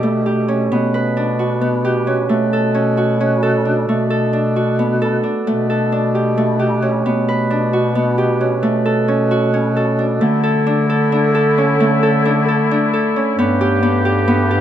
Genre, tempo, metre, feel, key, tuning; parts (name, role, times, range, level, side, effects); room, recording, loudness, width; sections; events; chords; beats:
contemporary instrumental, chamber music in an uneven meter; 265 BPM (eighths); 7/8; straight; B minor; A4 = 440 Hz
Celtic harp; arpeggios; 0.0-14.6 s; A3 to B4; -16 LUFS; right 1 dB
warm bass clarinet; bass; 0.0-14.6 s; G2 to D3; -19 LUFS; left 1 dB
warm woodwind section; sustained chords; 10.2-14.6 s; D3 to G4; -21 LUFS; left 3 dB
light reverb; close, detailed microphones; -14 LUFS; side -10 dB against mid
0.0-10.2 A section; 10.2-14.6 B section
0.0 A7sus4/B; 0.7 Bmadd9; 3.9 Bm7; 5.5 A7sus4/B; 10.2 Dsus2; 13.4 G
0.03 0.26 0.48 | 0.71 0.94 1.16 1.39 1.62 1.84 2.07 | 2.30 2.52 2.75 2.98 3.21 3.43 3.66 | 3.88 4.11 4.34 4.56 4.79 5.02 5.24 | 5.47 5.70 5.92 6.15 6.38 6.60 6.83 | 7.05 7.28 7.51 7.73 7.96 8.19 8.41 | 8.64 8.86 9.09 9.31 9.54 9.77 9.99 | 10.22 10.44 10.67 10.90 11.12 11.35 11.57 | 11.80 12.02 12.25 12.47 12.70 12.93 13.15 | 13.38 13.60 13.83 14.05 14.28 14.50